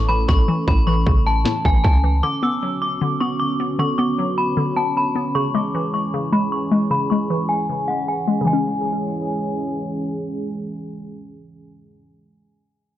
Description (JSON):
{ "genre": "hip hop, trap", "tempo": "154 BPM", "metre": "4/4", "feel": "half-time", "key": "C# phrygian", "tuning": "A4 = 440 Hz", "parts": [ { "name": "metallic FM bell", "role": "melody", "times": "0.0-9.6 s", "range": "F#5 to E6", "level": "-23 LUFS", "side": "left 1 dB", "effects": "chorus, low-pass filter, dub echo" }, { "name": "hollow square pluck", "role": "accompaniment", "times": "0.0-12.1 s", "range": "A2 to C#4", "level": "-23 LUFS", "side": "left 2 dB", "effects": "chorus, low-pass filter, dub echo" }, { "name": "dark analog pad", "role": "sustained chords", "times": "0.0-12.0 s", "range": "D3 to A4", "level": "-26 LUFS", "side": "right 2 dB", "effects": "chorus" }, { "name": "clean 808-style bass", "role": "bass", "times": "0.0-2.2 s", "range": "A1 to C#2", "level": "-18 LUFS", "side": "equal", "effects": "none" }, { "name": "trap drum kit", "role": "drums", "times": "0.3-1.9 s", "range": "kick drum, snare drum", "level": "-19 LUFS", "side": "equal", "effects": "vintage 12-bit sampler grit" } ], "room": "light reverb", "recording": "echo-heavy mix, low-pass filter", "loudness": "-18 LUFS", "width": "side -12 dB against mid", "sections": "0.0-8.5 A section; 8.5-11.6 B section", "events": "break 0.0-2.2; filter sweep 0.0-8.5", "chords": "0.0 A; 2.2 Bmadd9; 5.4 C#m" }